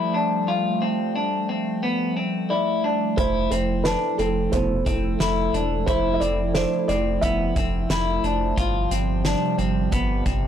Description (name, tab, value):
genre	dream pop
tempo	89 BPM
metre	4/4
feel	straight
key	F lydian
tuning	A4 = 440 Hz
part	hollow soft pad	sustained chords	0.0-10.5 s	C3 to A4	-26 LUFS	right 3 dB	chorus
part	semi-hollow electric guitar	arpeggios	0.0-10.5 s	B2 to F4	-25 LUFS	left 4 dB	wide subtle chorus, analog delay
part	felt-muted upright piano	melody	2.5-8.2 s	A4 to E5	-26 LUFS	right 2 dB	analog delay
part	saturated sub bass	bass	3.2-10.5 s	E1 to G1	-26 LUFS	equal	none
part	loose indie drum kit	drums	3.2-10.4 s	hi-hat, kick drum, snare drum	-27 LUFS	equal	none
room	small room ambience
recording	none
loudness	-20 LUFS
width	side -9 dB against mid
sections	0.0-10.5 A section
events	none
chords	0.0 G7sus4; 3.2 Fmaj7; 8.6 G7sus4